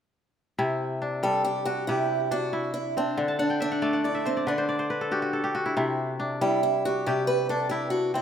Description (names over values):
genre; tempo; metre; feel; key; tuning
west african traditional, West African string and xylophone music; 93 BPM (dotted quarters); 12/8; straight; C lydian; A4 = 440 Hz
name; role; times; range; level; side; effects
kora; arpeggios; 0.6-8.2 s; C3 to A5; -26 LUFS; left 1 dB; none
picked acoustic archtop guitar; melody; 1.2-8.2 s; C4 to B4; -28 LUFS; right 2 dB; tape echo
room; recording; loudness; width
moderate lush hall reverb, RT60 2.5 s; rough home demo mix; -24 LUFS; side -8 dB against mid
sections
0.6-8.2 A section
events
kora fill 3.3-5.8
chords
0.6 C; 3.2 D; 5.8 C